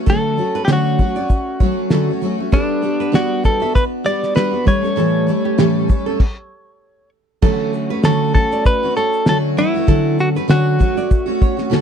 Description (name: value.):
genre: acoustic pop.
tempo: 98 BPM.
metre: 4/4.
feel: swing 55% on 16ths.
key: D major.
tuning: A4 = 441 Hz.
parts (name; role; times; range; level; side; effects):
picked steel-string acoustic guitar; accompaniment; 0.0-11.8 s; A2 to A4; -18 LUFS; equal; double-tracked left and right.
direct-recorded clean electric guitar; melody; 0.1-11.8 s; D4 to D5; -20 LUFS; equal; none.
nylon-string guitar; arpeggios; 0.1-11.8 s; G4 to E5; -26 LUFS; right 12 dB; none.
cloth-damped thuddy drum kit; drums; 0.1-11.8 s; crash cymbal, kick drum, shaker, snare drum; -15 LUFS; equal; none.
room: light reverb.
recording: dry, close 1970s-style studio recording.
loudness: -14 LUFS.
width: side -8 dB against mid.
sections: 0.0-7.4 A section; 7.4-11.8 B section.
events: stop 6.2-7.4.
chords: 0.0 Dmaj7; 2.5 Gmaj7; 4.7 A7; 7.4 Dmaj7.